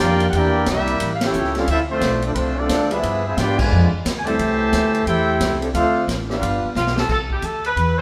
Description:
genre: jazz, big band swing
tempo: 178 BPM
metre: 4/4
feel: swing 63% on 8ths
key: C major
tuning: A4 = 438 Hz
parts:
  - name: warm trumpet section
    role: melody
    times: 0.0-6.7 s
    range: A3 to A5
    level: -25 LUFS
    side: equal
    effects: none
  - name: clear trombone section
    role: second line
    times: 0.0-6.7 s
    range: A2 to G4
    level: -24 LUFS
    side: equal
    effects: none
  - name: clear trombone section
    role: sustained chords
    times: 0.0-7.0 s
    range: Eb3 to A4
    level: -32 LUFS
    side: equal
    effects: none
  - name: upright bass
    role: bass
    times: 0.0-8.0 s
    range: G1 to Ab2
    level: -25 LUFS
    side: equal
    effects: none
  - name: swinging big-band drum kit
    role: drums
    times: 0.0-7.9 s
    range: crash cymbal, hi-hat, kick drum, ride cymbal, snare drum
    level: -28 LUFS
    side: equal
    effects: none
  - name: dark saxophone section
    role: melody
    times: 6.8-8.0 s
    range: F4 to B4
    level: -23 LUFS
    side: equal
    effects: none
  - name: clear trumpet section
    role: stabs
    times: 8.0 s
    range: G4 to C5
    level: -28 LUFS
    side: equal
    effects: none
room: wet stone room reverb, RT60 1.3 s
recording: band playing live in one room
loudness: -19 LUFS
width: mono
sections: 0.0-7.1 A section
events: band accent 1.2, 3.5; drum fill 6.7-7.1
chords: 0.3 Em7b5; 1.0 A7b13; 1.7 Dm7; 3.0 G7b9; 4.4 C6; 5.7 Dm7; 6.4 G7; 7.1 C6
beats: 0.00 | 0.34 0.68 1.01 1.35 | 1.69 2.03 2.36 2.70 | 3.04 3.38 3.71 4.05 | 4.39 4.72 5.06 5.40 | 5.74 6.07 6.41 6.75 | 7.08 7.42 7.76

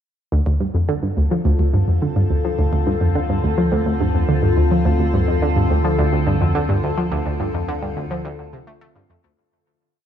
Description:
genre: ambient, sequencer-driven space music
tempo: 106 BPM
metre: 4/4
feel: straight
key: D minor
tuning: A4 = 441 Hz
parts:
  - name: evolving wavetable pad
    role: sustained chords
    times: 1.1-9.3 s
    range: D3 to A4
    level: -23 LUFS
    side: left 2 dB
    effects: chorus, built-in reverb, phaser, shimmer reverb
  - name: analog pluck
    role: riff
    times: 0.3-9.3 s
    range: D2 to A3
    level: -18 LUFS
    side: equal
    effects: chorus, ping-pong delay
  - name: round analog bass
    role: bass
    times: 0.3-9.4 s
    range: D2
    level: -25 LUFS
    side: equal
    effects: none
room: moderate plate reverb, RT60 2.7 s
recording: dark, warm production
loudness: -16 LUFS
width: side -9 dB against mid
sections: 0.3-9.4 A section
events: fade-in on ambient pad 0.3-9.4; filter sweep on synth arpeggio sound 0.3-9.4; fade-out 6.4-9.4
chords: 0.3 Dm7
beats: | 0.32 0.89 1.46 2.02 | 2.59 3.15 3.72 4.29 | 4.85 5.42 5.98 6.55 | 7.12 7.68 8.25 8.81

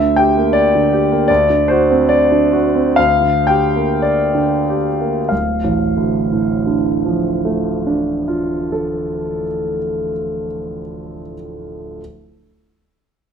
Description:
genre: classical, romantic character piece for solo piano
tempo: 43-80 BPM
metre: 2/4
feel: rubato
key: D minor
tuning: A4 = 439 Hz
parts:
  - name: clear concert grand piano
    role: solo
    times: 0.0-12.0 s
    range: D1 to G5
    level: -14 LUFS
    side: equal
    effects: none
room: moderate large studio reverb, RT60 1.1 s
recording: none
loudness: -14 LUFS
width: side -7 dB against mid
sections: 0.0-5.3 A section; 5.3-9.9 B section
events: slowing down 0.5-5.3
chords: 0.0 Gm/D; 1.3 D7; 3.0 Gm/D; 5.3 Dm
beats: 0.53 | 1.29 2.08 | 2.96 4.02 | 5.30 6.43 | 7.59 8.74

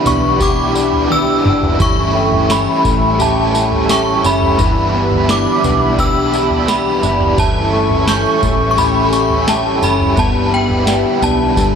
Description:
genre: dream pop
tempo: 86 BPM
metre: 4/4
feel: straight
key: unclear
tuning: A4 = 439 Hz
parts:
  - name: synth chime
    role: melody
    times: 0.0-11.8 s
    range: G5 to E6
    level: -17 LUFS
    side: left 1 dB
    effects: ensemble chorus, phaser, ping-pong delay
  - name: biting overdriven guitar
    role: accompaniment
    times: 0.0-11.8 s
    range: G2 to A4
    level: -19 LUFS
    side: right 3 dB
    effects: tremolo, ensemble chorus
  - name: hollow soft pad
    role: sustained chords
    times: 0.0-11.8 s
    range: C#4 to C#6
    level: -19 LUFS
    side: equal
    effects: chorus
  - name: clean electric guitar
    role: arpeggios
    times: 0.0-11.8 s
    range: E3 to G4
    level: -19 LUFS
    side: left 4 dB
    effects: ensemble chorus, ping-pong delay
  - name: vintage muted picked electric bass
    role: bass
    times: 0.1-11.8 s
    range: F#1 to B1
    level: -20 LUFS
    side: equal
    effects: none
  - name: booming analog drum machine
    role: drums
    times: 0.1-11.8 s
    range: kick drum, snare drum, tambourine, toms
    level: -20 LUFS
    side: equal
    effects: none
  - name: glockenspiel with rubber mallets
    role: texture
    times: 0.7-11.8 s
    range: G5 to G6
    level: -28 LUFS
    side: equal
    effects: ping-pong delay
room: moderate lush hall reverb, RT60 2.1 s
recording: none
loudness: -11 LUFS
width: side -7 dB against mid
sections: 0.0-11.8 A section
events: drum fill 1.1-1.8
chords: 0.0 Em7; 1.8 A/G; 4.6 Em7/G; 7.4 A/G; 10.2 Em7/G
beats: 0.41 1.10 | 1.80 2.50 3.20 3.89 | 4.59 5.29 5.99 6.68 | 7.38 8.08 8.78 9.47 | 10.17 10.87 11.57

